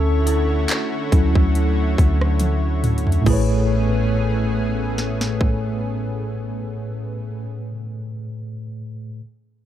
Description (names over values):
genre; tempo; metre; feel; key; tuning
contemporary R&B; 70 BPM; 4/4; swing 54% on 16ths; A major; A4 = 440 Hz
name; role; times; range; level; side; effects
mellow tine electric piano; accompaniment; 0.0-9.2 s; A2 to C#5; -23 LUFS; equal; medium stereo tremolo
lush unison pad; sustained chords; 0.0-7.5 s; A2 to C#5; -27 LUFS; equal; chorus
soft 808-style bass; bass; 0.0-7.5 s; A1 to D2; -20 LUFS; equal; none
trap drum kit; drums; 0.3-5.6 s; crash cymbal, handclaps, hi-hat, kick drum, rim click, snare drum, toms; -21 LUFS; equal; overdrive
synth chime; texture; 0.3-7.7 s; E4; -34 LUFS; right 4 dB; none
room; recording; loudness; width
little or no reverb; dark, warm production; -18 LUFS; side -11 dB against mid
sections
0.0-3.3 A section; 3.3-6.7 B section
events
tine electric piano solo 0.0-3.3; drum fill 2.4-3.3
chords
0.0 Dmaj7; 3.3 Amaj7